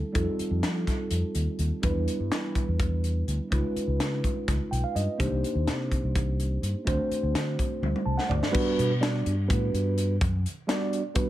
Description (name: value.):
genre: electric jazz fusion.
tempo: 250 BPM (eighths).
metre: 7/8.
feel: straight.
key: unclear.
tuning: A4 = 440 Hz.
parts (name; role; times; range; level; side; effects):
mellow tine electric piano; accompaniment; 0.0-11.3 s; G3 to A5; -30 LUFS; right 1 dB; wide subtle chorus.
crisp fusion drum kit; drums; 0.1-11.3 s; crash cymbal, hi-hat, kick drum, snare drum, toms; -29 LUFS; equal; none.
fingered electric bass; bass; 0.2-10.4 s; B1 to F3; -28 LUFS; equal; none.
room: small room reverb.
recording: none.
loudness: -25 LUFS.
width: side -14 dB against mid.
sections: 0.0-8.5 A section; 8.5-11.3 B section.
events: tine electric piano fill 4.5-5.2, 7.8-8.5; drum fill 7.8-8.5; fingered electric bass solo 8.5-11.3.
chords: 0.2 F9; 1.8 Em7; 3.5 C#9; 5.2 Cm9; 6.9 D7; 8.5 Gmaj7.